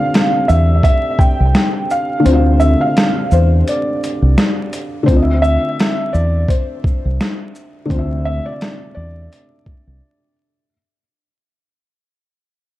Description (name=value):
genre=lo-fi hip hop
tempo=85 BPM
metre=4/4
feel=swing 58% on 16ths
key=D minor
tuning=A4 = 440 Hz
part: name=felt-muted upright piano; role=melody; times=0.0-10.3 s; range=C5 to G5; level=-20 LUFS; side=equal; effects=low-pass filter, tape echo
part: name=felt-muted upright piano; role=accompaniment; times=0.0-10.7 s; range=D3 to F5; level=-20 LUFS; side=left 1 dB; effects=low-pass filter, tape echo
part: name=mellow French horn section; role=sustained chords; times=0.0-5.0 s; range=D3 to G4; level=-28 LUFS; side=right 1 dB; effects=low-pass filter
part: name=boom bap sampler-style drum kit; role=drums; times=0.1-9.9 s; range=hi-hat, kick drum, shaker, snare drum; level=-16 LUFS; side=equal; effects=none
part: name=deep dub fingered electric bass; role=bass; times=0.5-10.0 s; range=C2 to E2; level=-13 LUFS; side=equal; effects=none
room=studio ambience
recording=echo-heavy mix, vinyl crackle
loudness=-12 LUFS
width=side -15 dB against mid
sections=0.0-5.1 A section; 5.1-10.7 B section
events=kick muted 2.3-5.1; fade-out 5.1-10.7; break 10.0-10.7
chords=0.0 Dm9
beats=0.13 0.84 1.55 | 2.25 2.96 3.66 4.37 | 5.08 5.78 6.49 7.19 | 7.90 8.60 9.31 10.02